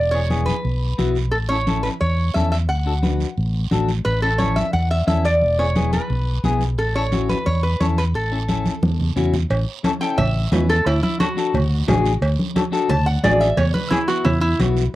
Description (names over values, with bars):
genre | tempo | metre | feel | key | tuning
latin, cumbia | 176 BPM | 4/4 | straight | A major | A4 = 440 Hz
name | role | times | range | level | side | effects
lap resonator guitar | melody | 0.0-14.6 s | E4 to A5 | -22 LUFS | right 1 dB | slapback echo
fingered electric bass | bass | 0.0-14.9 s | E1 to E2 | -20 LUFS | equal | none
clean electric guitar | accompaniment | 0.1-14.8 s | B3 to B4 | -23 LUFS | left 5 dB | none
congas | percussion | 0.3-14.8 s | none | -24 LUFS | equal | none
guiro | percussion | 0.3-14.9 s | none | -36 LUFS | right 12 dB | none
cowbell and timbales | percussion | 9.5-14.8 s | none | -27 LUFS | right 3 dB | none
room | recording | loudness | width
light reverb | dry, close 1970s-style studio recording | -17 LUFS | side -16 dB against mid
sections
0.0-9.5 A section; 9.5-15.0 B section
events
drum fill 8.8-9.5; resonator guitar played with a steel bar solo 9.5-15.0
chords
0.0 E; 1.3 A; 2.7 D; 4.1 A; 5.4 E; 6.8 A; 10.9 D; 13.6 E5